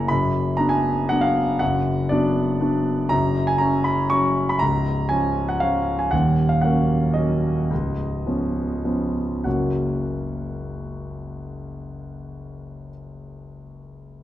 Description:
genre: classical, piano waltz.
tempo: 94-126 BPM.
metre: 3/4.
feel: rubato.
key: F# major.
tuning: A4 = 441 Hz.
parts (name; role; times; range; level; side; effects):
warm concert grand piano; solo; 0.0-14.2 s; C#1 to C#6; -20 LUFS; equal; none.
room: wet recital hall reverb, RT60 1.7 s.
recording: none.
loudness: -19 LUFS.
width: side -13 dB against mid.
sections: 0.0-9.4 A section; 9.4-12.7 B section.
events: slowing down 5.4-9.4.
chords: 0.1 Bm/F#; 3.1 F#5; 4.6 C#; 6.1 D#m7; 7.7 C#7; 9.4 F#.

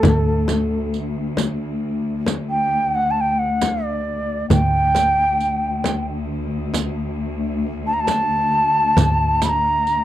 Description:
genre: Arabic maqam ensemble.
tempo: 134 BPM (eighths).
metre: 10/8.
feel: straight.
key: D maqam hijaz.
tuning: A4 = 440 Hz.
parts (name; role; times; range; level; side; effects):
breathy mellow ney; melody; 0.0-10.0 s; A4 to B5; -18 LUFS; equal; slapback echo.
dark double bass; bass; 0.0-10.0 s; D2; -22 LUFS; equal; none.
clear studio cello section; drone; 0.0-10.0 s; D2; -25 LUFS; left 2 dB; stereo widening.
darbuka; percussion; 0.0-10.0 s; none; -26 LUFS; right 2 dB; none.
frame drum; percussion; 0.0-9.6 s; none; -22 LUFS; left 3 dB; none.
riq; percussion; 0.0-10.0 s; none; -28 LUFS; right 9 dB; none.
room: light reverb.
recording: dry, close 1970s-style studio recording.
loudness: -18 LUFS.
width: side -12 dB against mid.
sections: 0.0-10.0 A section.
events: none.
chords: none.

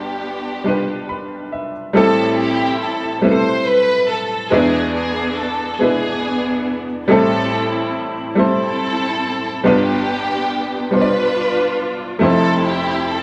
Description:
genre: gospel.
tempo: 47 BPM (dotted quarters).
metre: 6/8.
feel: straight.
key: unclear.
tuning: A4 = 444 Hz.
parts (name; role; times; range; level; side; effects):
dark studio string section; melody; 0.0-13.2 s; B3 to C5; -22 LUFS; equal; none.
clear upright piano; accompaniment; 0.0-13.2 s; F1 to B5; -20 LUFS; equal; none.
room: wet stone room reverb, RT60 1.2 s.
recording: band playing live in one room.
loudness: -18 LUFS.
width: mono.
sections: 0.0-1.9 A section; 1.9-13.2 B section.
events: upright piano fill 0.7-1.9.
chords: 0.0 G7; 1.9 Am7; 4.5 E7; 7.1 Am7; 9.6 G7; 12.2 Fmaj7.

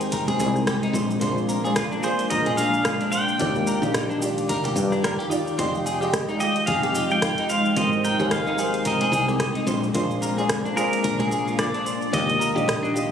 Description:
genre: sunset chillout.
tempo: 110 BPM.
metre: 4/4.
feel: swing 58% on 16ths.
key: unclear.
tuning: A4 = 439 Hz.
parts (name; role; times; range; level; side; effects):
soft electric-piano-like synth keys; accompaniment; 0.0-13.1 s; Eb3 to G5; -29 LUFS; equal; chorus, auto-pan, digital delay.
ethereal airy pad; sustained chords; 0.0-13.1 s; Eb3 to G5; -28 LUFS; equal; ensemble chorus, built-in reverb.
woody fretless electric bass; bass; 0.0-13.1 s; F1 to G2; -28 LUFS; left 1 dB; none.
deep house drum kit; drums; 0.0-13.1 s; hi-hat, rim click, shaker; -30 LUFS; equal; overdrive, small room ambience.
semi-hollow electric guitar; arpeggios; 0.1-13.1 s; D4 to D5; -28 LUFS; left 1 dB; digital delay.
electronic kick drum; drums; 0.1-12.8 s; none; -34 LUFS; left 1 dB; overdrive, small room ambience.
congas; percussion; 0.3-12.9 s; none; -33 LUFS; right 1 dB; none.
pedal steel guitar; melody; 2.0-13.1 s; Bb4 to G5; -25 LUFS; equal; digital delay.
room: moderate lush hall reverb, RT60 2.0 s.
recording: recorded on a phone in the room, studio reverb, compression.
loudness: -20 LUFS.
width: side -8 dB against mid.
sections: 0.0-13.1 A section.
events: none.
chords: 0.0 Abmaj9; 0.9 Bb9; 3.4 Ebmaj7; 5.6 Fm9; 7.8 Abmaj9; 9.7 Bb9; 12.1 Ebmaj7.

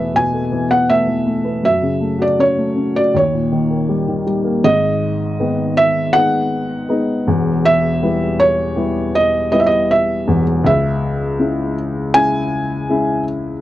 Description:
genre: pop.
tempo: 80 BPM.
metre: 4/4.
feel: straight.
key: unclear.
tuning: A4 = 441 Hz.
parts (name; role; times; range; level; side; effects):
felt-muted upright piano; melody; 0.0-13.2 s; C#5 to G#5; -16 LUFS; right 1 dB; none.
dark upright piano; accompaniment; 0.0-13.6 s; E1 to A4; -17 LUFS; left 1 dB; none.
room: little or no reverb.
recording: dry, close 1970s-style studio recording.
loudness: -14 LUFS.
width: side -14 dB against mid.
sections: 0.0-4.6 A section; 4.6-13.6 B section.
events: none.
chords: 0.0 Esus4; 1.6 F#m; 3.1 D#7; 4.6 G#m; 7.3 Em; 10.6 C#m.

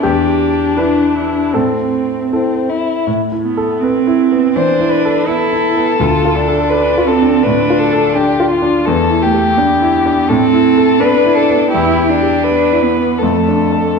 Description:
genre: neoclassical piano and strings.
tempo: 77-85 BPM.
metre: 4/4.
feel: rubato.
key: A minor.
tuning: A4 = 440 Hz.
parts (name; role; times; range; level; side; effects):
muted violin; melody; 0.0-14.0 s; C4 to C5; -16 LUFS; left 5 dB; none.
muted cello; second line; 0.0-14.0 s; A3 to G4; -15 LUFS; right 5 dB; none.
clear grand piano; accompaniment; 0.0-14.0 s; D2 to B4; -15 LUFS; equal; none.
room: wet recital hall reverb, RT60 1.4 s.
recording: recorded in a church or concert hall, nothing above 10.4 kHz.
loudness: -11 LUFS.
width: side -5 dB against mid.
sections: 0.0-3.1 A section; 3.1-14.0 A section.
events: none.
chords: 0.0 Em7; 1.5 Am; 3.1 Amadd9; 6.0 Dm; 8.9 Em7; 10.3 Amadd9; 11.7 Em7; 13.2 Dm/F.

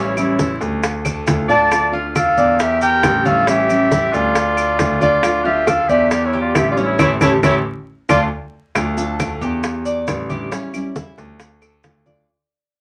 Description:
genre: latin, Cuban son and guajira.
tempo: 136 BPM.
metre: 4/4.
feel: straight.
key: D harmonic minor.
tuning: A4 = 439 Hz.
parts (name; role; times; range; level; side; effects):
warm clarinet; melody; 0.0-8.2 s; C#5 to A5; -20 LUFS; equal; none.
clear trumpet; second line; 0.0-8.2 s; E4 to D5; -24 LUFS; equal; none.
nylon-string guitar; accompaniment; 0.0-12.3 s; D3 to F4; -26 LUFS; equal; none.
Cuban tres; arpeggios; 0.0-12.3 s; C#4 to D5; -25 LUFS; equal; none.
dark grand piano; bass; 0.0-12.2 s; A1 to E2; -24 LUFS; equal; none.
claves; percussion; 0.2-11.8 s; none; -29 LUFS; equal; none.
congas; percussion; 0.2-12.3 s; none; -26 LUFS; equal; none.
maracas; percussion; 0.2-12.3 s; none; -37 LUFS; equal; none.
bongos; percussion; 0.4-12.3 s; none; -25 LUFS; equal; none.
room: wet club reverb, RT60 0.6 s.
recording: vinyl crackle.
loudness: -17 LUFS.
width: mono.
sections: 0.0-8.8 A section; 8.8-12.3 B section.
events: drum fill 1.0-1.7; band accent 7.0-8.8; fade-out 8.8-12.3.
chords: 0.0 A7; 0.8 Dm; 2.6 Em7b5; 3.5 A7; 4.4 Dm; 6.1 Em7b5; 7.0 A7; 7.9 Dm; 9.6 A7sus4; 10.5 C#dim; 11.4 Dm.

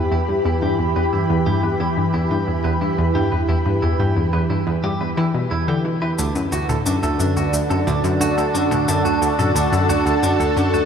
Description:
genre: ambient, sequencer-driven space music.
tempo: 89 BPM.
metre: 4/4.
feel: straight.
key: E minor.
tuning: A4 = 441 Hz.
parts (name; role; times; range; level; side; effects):
lush unison pad; sustained chords; 0.0-10.9 s; D3 to B5; -20 LUFS; equal; chorus, phaser, shimmer reverb.
clean electric guitar; arpeggios; 0.0-10.9 s; D4 to B4; -27 LUFS; right 2 dB; auto-pan, ping-pong delay, shimmer reverb.
analog pluck; riff; 0.0-10.9 s; D2 to E3; -20 LUFS; equal; chorus, ping-pong delay.
electronic cabasa and toms; percussion; 6.2-10.9 s; none; -29 LUFS; left 2 dB; overdrive, ping-pong delay.
room: wet huge ambient reverb, RT60 7.8 s.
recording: none.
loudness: -17 LUFS.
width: side -7 dB against mid.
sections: 0.0-10.9 A section.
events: fade-in on clean electric guitar 0.0-10.9; fade-out 9.8-10.9.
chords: 0.0 Em; 6.2 D.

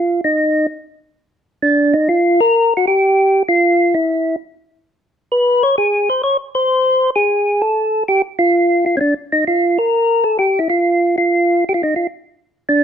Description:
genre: jazz.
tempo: 130 BPM.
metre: 4/4.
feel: swing 68% on 8ths.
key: unclear.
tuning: A4 = 436 Hz.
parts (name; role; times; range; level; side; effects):
percussive tonewheel organ; solo; 0.0-12.8 s; Db4 to Db5; -13 LUFS; equal; slow rotary speaker.
room: light reverb.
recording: close, detailed microphones.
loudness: -13 LUFS.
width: side -8 dB against mid.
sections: 0.0-12.8 A section.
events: none.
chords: none.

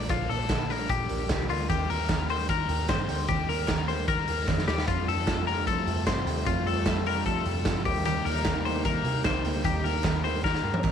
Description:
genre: jangly indie pop.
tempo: 151 BPM.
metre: 4/4.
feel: straight.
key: unclear.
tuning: A4 = 440 Hz.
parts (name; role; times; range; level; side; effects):
picked steel-string acoustic guitar; accompaniment; 0.0-10.9 s; Bb2 to Bb4; -33 LUFS; right 9 dB; none.
twelve-string electric guitar; arpeggios; 0.0-10.9 s; F4 to C5; -30 LUFS; left 12 dB; tape echo.
vintage muted picked electric bass; bass; 0.0-10.9 s; G1 to F3; -32 LUFS; equal; none.
raw garage drum kit; drums; 0.1-10.9 s; hi-hat, kick drum, ride cymbal, snare drum, toms; -30 LUFS; equal; none.
group handclap; percussion; 0.5-10.9 s; none; -42 LUFS; right 14 dB; none.
hollow soft pad; sustained chords; 4.9-10.9 s; C3 to F4; -34 LUFS; right 2 dB; chorus.
room: light reverb, small room reverb.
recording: 1960s-style stereo with parts hard left and right, vinyl crackle.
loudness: -25 LUFS.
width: side -8 dB against mid.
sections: 0.0-10.9 A section.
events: drum fill 4.5-4.9, 10.4-10.9.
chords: 0.0 Bb6; 1.7 Eb6; 4.9 Fadd9; 7.9 Eb6.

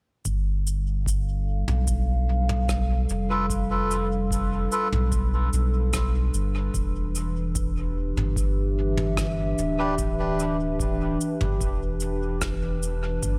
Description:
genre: ambient dub.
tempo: 74 BPM.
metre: 4/4.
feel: straight.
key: G mixolydian.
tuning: A4 = 439 Hz.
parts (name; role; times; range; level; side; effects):
warbly tape-like pad; sustained chords; 0.8-13.4 s; E3 to F5; -31 LUFS; equal; chorus, built-in reverb.
soft dub sub bass; bass; 0.3-13.4 s; D1 to B1; -28 LUFS; equal; none.
electronic kick drum; drums; 0.3-13.4 s; none; -33 LUFS; equal; none.
soft brush drum kit; drums; 0.3-13.4 s; cabasa, rim click, toms; -35 LUFS; equal; dub echo.
melodica; stabs; 3.3-4.9, 9.8-10.5 s; D4 to B4; -34 LUFS; equal; dub echo.
wind-like tuned noise texture; texture; 13.4 s; D5; -54 LUFS; equal; none.
room: light reverb.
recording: none.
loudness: -25 LUFS.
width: mono.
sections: 0.3-13.4 A section.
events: none.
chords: 0.3 G7; 6.7 Em7.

